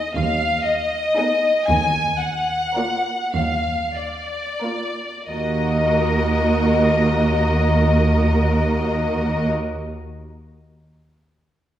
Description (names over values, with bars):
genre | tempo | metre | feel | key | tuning
classical, slow romantic movement for string orchestra | 28-41 BPM (dotted quarters) | 6/8 | rubato | Eb minor | A4 = 440 Hz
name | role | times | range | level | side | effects
rich studio violin section | melody | 0.0-9.5 s | D5 to Ab5 | -22 LUFS | left 2 dB | none
warm studio violin section | second line | 0.0-9.5 s | Ab4 to Eb5 | -26 LUFS | left 2 dB | none
warm studio viola section | accompaniment | 0.0-9.5 s | Bb3 to Gb4 | -23 LUFS | right 2 dB | none
rich studio cello section | bass | 0.2-9.5 s | Eb2 | -25 LUFS | right 1 dB | none
warm studio double bass section | bass | 1.7-9.5 s | Eb2 | -23 LUFS | right 2 dB | none
room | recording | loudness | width
wet recital hall reverb, RT60 1.7 s | heard from further back in the room | -17 LUFS | side -11 dB against mid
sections
0.0-5.3 A section; 5.3-9.0 B section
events
slowing down 0.0-5.3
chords
0.0 Abm/Eb; 1.7 Bb/Eb; 5.3 Ebm